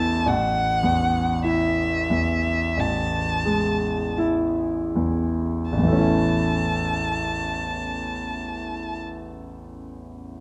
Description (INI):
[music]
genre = classical, impressionist duo for violin and grand piano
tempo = 38-52 BPM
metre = 4/4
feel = rubato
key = A major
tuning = A4 = 440 Hz
[part]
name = warm violin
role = melody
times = 0.0-9.0 s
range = E5 to A5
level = -28 LUFS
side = equal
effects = none
[part]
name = clear concert grand piano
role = accompaniment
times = 0.0-10.4 s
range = A1 to E4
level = -25 LUFS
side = equal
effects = none
[sound]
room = moderate scoring stage reverb, RT60 1.5 s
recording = close, detailed microphones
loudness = -23 LUFS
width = mono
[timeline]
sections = 0.0-5.7 A section; 5.7-10.4 B section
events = slowing down 0.0-5.7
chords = 0.3 F#m9/A; 5.7 A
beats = | 0.27 1.46 2.79 4.19 | 5.73 7.25 8.74 10.23